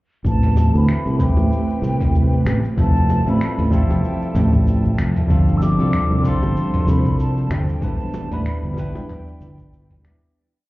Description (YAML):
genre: sunset chillout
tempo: 95 BPM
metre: 4/4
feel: swing 56% on 16ths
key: A minor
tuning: A4 = 441 Hz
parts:
  - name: bell-like tine electric piano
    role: accompaniment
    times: 0.2-10.4 s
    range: G3 to D5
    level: -26 LUFS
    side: equal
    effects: auto-pan, low-pass filter, digital delay
  - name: sustaining fretless electric bass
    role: bass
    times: 0.2-10.2 s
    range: E1 to D2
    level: -18 LUFS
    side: equal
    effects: tube saturation
  - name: electronic kick drum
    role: drums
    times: 0.2-10.0 s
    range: none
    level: -20 LUFS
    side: equal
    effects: overdrive
  - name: mellow hollow concert flute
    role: melody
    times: 0.3-10.0 s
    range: F5 to E6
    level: -29 LUFS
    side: left 1 dB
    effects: digital delay
  - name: ethereal airy pad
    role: sustained chords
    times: 1.1-10.3 s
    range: F3 to A5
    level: -28 LUFS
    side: right 2 dB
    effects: ensemble chorus, built-in reverb, tremolo
  - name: dusty soul sampler-style drum kit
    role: drums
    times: 0.3-10.3 s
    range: cabasa, finger snaps, toms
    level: -22 LUFS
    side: equal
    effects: none
  - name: bongos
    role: percussion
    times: 0.6-9.1 s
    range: none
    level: -34 LUFS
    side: left 2 dB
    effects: none
room: little or no reverb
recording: heard muffled through a wall, club reverb, EQ, nothing above 7.8 kHz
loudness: -16 LUFS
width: side -19 dB against mid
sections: 0.2-10.4 groove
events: filter sweep on tine electric piano 0.2-10.4; fade-out 7.0-10.4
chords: 0.2 Am9; 2.8 Fmaj9; 5.3 G9sus4; 7.8 Em7